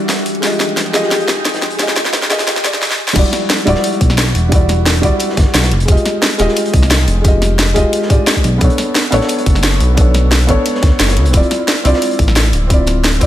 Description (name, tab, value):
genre	liquid drum and bass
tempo	176 BPM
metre	4/4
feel	straight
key	unclear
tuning	A4 = 440 Hz
part	felt-muted upright piano	accompaniment	0.0-13.3 s	G3 to Eb5	-17 LUFS	equal	ping-pong delay
part	glassy FM pad	sustained chords	0.0-2.8 s	E3 to G4	-23 LUFS	left 2 dB	ensemble chorus, built-in reverb, sidechain pumping
part	crunchy breakbeat drum kit	drums	0.1-13.3 s	hi-hat, snare drum	-25 LUFS	equal	high-pass filter on hats, studio reverb, high-pass filter on snare, high-pass filter on room
part	garage drum kit	drums	0.1-13.3 s	crash cymbal, hi-hat, snare drum	-16 LUFS	equal	studio reverb
part	smooth synth bass	bass	3.2-13.3 s	D1 to D2	-14 LUFS	equal	none
part	electronic kick drum	drums	3.2-13.3 s	none	-13 LUFS	equal	studio reverb
room	light reverb, studio reverb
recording	high-pass filter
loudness	-11 LUFS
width	side -12 dB against mid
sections	0.0-3.2 A section; 3.2-13.3 B section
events	build-up 0.0-3.2; drum fill 0.0-2.8, 2.8-3.2; drop 3.2-13.3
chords	0.3 Fm9; 3.0 N.C.; 3.2 Em9; 5.7 Fm9; 8.4 Bm9; 11.3 Dm9